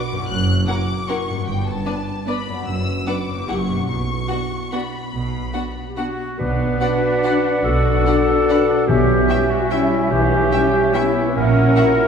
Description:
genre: classical, orchestral ballroom waltz.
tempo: 135-163 BPM.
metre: 3/4.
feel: rubato.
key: B minor.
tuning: A4 = 440 Hz.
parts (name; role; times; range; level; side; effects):
rich symphonic violin section; melody; 0.0-11.8 s; G5 to F#6; -30 LUFS; left 4 dB; none.
concert harp; arpeggios; 0.0-12.1 s; F#2 to C#5; -25 LUFS; left 1 dB; none.
rich studio cello section; bass; 0.3-11.7 s; F#2 to B2; -28 LUFS; right 3 dB; none.
warm studio double bass section; bass; 0.3-11.7 s; F#1 to B1; -24 LUFS; right 2 dB; none.
rich studio violin section; second line; 0.7-11.8 s; F#4 to G5; -30 LUFS; left 2 dB; none.
rich studio viola section; accompaniment; 0.7-12.1 s; E3 to F#4; -25 LUFS; right 1 dB; none.
mellow clarinet; second line; 5.9-12.1 s; E4 to B4; -20 LUFS; left 2 dB; none.
warm oboe; second line; 6.0-12.1 s; E4 to B4; -26 LUFS; equal; none.
small flute group; second line; 6.4-12.1 s; E5 to F#5; -26 LUFS; equal; none.
warm bassoon; accompaniment; 6.4-12.1 s; C#4 to E4; -24 LUFS; right 1 dB; none.
timpani; percussion; 6.4-9.5 s; B2; -26 LUFS; right 2 dB; none.
mellow French horn section; sustained chords; 6.8-11.9 s; C#4 to F#4; -26 LUFS; left 3 dB; none.
room: wet scoring stage reverb, RT60 1.7 s.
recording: heard from further back in the room.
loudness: -16 LUFS.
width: side -7 dB against mid.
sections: 0.0-6.4 A section; 6.4-12.1 B section.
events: none.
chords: 0.3 F#7; 1.5 G; 2.7 Bm/F#; 3.5 F#7b9; 3.9 Bm; 8.9 C#m7b5/B; 11.4 F#7/A#.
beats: | 0.30 0.68 1.09 | 1.47 1.86 2.28 | 2.66 3.06 3.48 | 3.88 4.30 4.73 | 5.14 5.55 5.98 | 6.41 6.82 7.25 | 7.65 8.06 8.49 | 8.89 9.29 9.71 | 10.11 10.52 10.95 | 11.37 11.78.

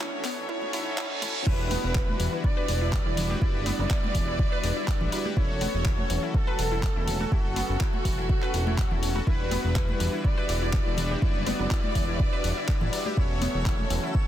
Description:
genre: progressive house.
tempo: 123 BPM.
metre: 4/4.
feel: straight.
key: E dorian.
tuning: A4 = 444 Hz.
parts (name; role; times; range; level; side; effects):
expressive portamento lead; melody; 0.0-14.3 s; F#4 to D5; -34 LUFS; equal; wide subtle chorus, sidechain pumping, ping-pong delay.
rich studio string section; sustained chords; 0.0-14.3 s; C#3 to E5; -40 LUFS; right 2 dB; none.
glassy wavetable pluck; arpeggios; 0.0-14.1 s; E3 to B4; -36 LUFS; left 1 dB; chorus, sidechain pumping, ping-pong delay.
soft supersaw; stabs; 0.0-14.3 s; G3 to B4; -34 LUFS; left 2 dB; phaser, sidechain pumping, ping-pong delay.
deep house drum kit; drums; 0.0-14.0 s; crash cymbal, handclaps, hi-hat; -35 LUFS; left 1 dB; overdrive, high-pass filter on hats, high-pass filter on snare, high-pass filter on cymbals, high-pass filter on room.
electronic kick drum; drums; 0.0-14.3 s; none; -26 LUFS; equal; overdrive, high-pass filter on kick, high-pass filter on room.
riser and reverse cymbal; sound effects; 0.0-1.5 s; none; -36 LUFS; right 2 dB; none.
congas and woodblock; percussion; 0.6-13.9 s; none; -37 LUFS; equal; sidechain pumping on perc.
warm symphonic violin section; second line; 1.5-14.3 s; F#4 to D5; -38 LUFS; right 2 dB; sidechain pumping, ping-pong delay.
fat analog bass; bass; 1.5-14.0 s; E1 to A1; -30 LUFS; equal; sidechain pumping.
twinkling granular texture; texture; 9.7-14.3 s; E5; -45 LUFS; right 4 dB; none.
room: digital ambience.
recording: dense, heavily limited modern master, high-pass filter.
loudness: -24 LUFS.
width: side -12 dB against mid.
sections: 0.0-1.5 A section; 1.5-14.3 B section.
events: build-up 0.0-1.5; riser 0.0-1.5; filter sweep on synth arpeggio sound 0.0-1.5; reverse cymbal 0.5-1.5; drop 1.5-14.3.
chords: 0.0 F#m/E; 1.5 Em9; 5.4 F#m/E; 9.3 Em9; 13.2 F#m/E.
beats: 0.00 0.49 0.98 | 1.47 1.95 2.44 2.93 | 3.42 3.90 4.39 4.88 | 5.37 5.86 6.34 6.83 | 7.32 7.81 8.29 8.78 | 9.27 9.76 10.25 10.73 | 11.22 11.71 12.20 12.69 | 13.17 13.66 14.15.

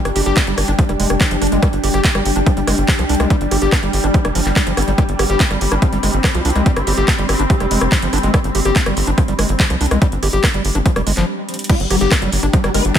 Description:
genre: psychedelic trance.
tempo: 143 BPM.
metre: 4/4.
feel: straight.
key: G major.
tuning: A4 = 440 Hz.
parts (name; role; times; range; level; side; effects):
swarming drone; sustained chords; 0.0-13.0 s; G3 to D4; -23 LUFS; left 1 dB; built-in reverb, sidechain pumping.
airy breathy pad; texture; 0.0-13.0 s; D4 to B5; -27 LUFS; left 1 dB; chorus, sidechain pumping.
tight sequencer bass; bass; 0.1-12.9 s; F1 to C2; -19 LUFS; equal; none.
techno drum kit; drums; 0.1-13.0 s; crash cymbal, handclaps, hi-hat, rim click; -21 LUFS; equal; studio reverb.
formant-sweep wobble bass; second line; 0.2-0.7, 5.2-8.3, 11.9-12.1 s; B3 to G4; -30 LUFS; right 4 dB; none.
overdriven acid bass; riff; 0.2-13.0 s; F3 to G4; -22 LUFS; left 1 dB; distortion, auto-pan, sidechain pumping, digital delay.
electronic kick drum; drums; 0.4-13.0 s; none; -15 LUFS; equal; studio reverb.
swarming rave lead; melody; 11.7-13.0 s; G3 to B4; -21 LUFS; left 3 dB; chorus, phaser, sidechain pumping, digital delay.
room: light reverb.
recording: none.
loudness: -13 LUFS.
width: side -9 dB against mid.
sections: 0.0-11.7 A section; 11.7-13.0 B section.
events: stop 11.3-11.7; drum fill 11.5; drop 11.7-13.0.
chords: 0.0 G5.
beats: 0.37 0.79 1.21 | 1.62 2.04 2.46 2.88 | 3.30 3.72 4.14 4.56 | 4.98 5.40 5.82 6.24 | 6.66 7.08 7.50 7.92 | 8.34 8.76 9.18 9.60 | 10.02 10.44 10.86 11.28 | 11.70 12.12 12.53 12.95.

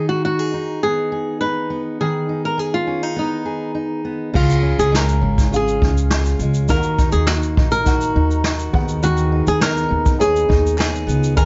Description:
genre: acoustic pop.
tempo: 102 BPM.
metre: 4/4.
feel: straight.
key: unclear.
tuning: A4 = 441 Hz.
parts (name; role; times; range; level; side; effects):
flamenco guitar; melody; 0.0-11.5 s; Eb4 to Cb5; -23 LUFS; equal; none.
fingerpicked steel-string acoustic guitar; accompaniment; 0.0-11.5 s; Db3 to Ab4; -25 LUFS; equal; none.
dark upright piano; accompaniment; 4.3-11.5 s; Cb4 to Ab5; -33 LUFS; equal; none.
upright bass; bass; 4.4-11.5 s; Ab1 to Eb2; -22 LUFS; equal; none.
vintage brush drum kit; drums; 4.4-11.5 s; crash cymbal, kick drum, shaker, snare drum; -22 LUFS; equal; none.
group handclap; percussion; 9.6-10.9 s; none; -39 LUFS; equal; none.
room: light reverb.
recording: nothing above 7.7 kHz.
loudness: -18 LUFS.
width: mono.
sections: 0.0-4.4 A section; 4.4-11.5 B section.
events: none.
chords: 0.0 Abm/Eb; 4.4 Db; 6.7 Ebm; 8.7 Abm7.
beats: 0.24 0.83 1.41 | 2.00 2.59 3.18 3.77 | 4.35 4.94 5.52 6.11 | 6.70 7.28 7.87 8.45 | 9.04 9.62 10.21 10.79 | 11.38.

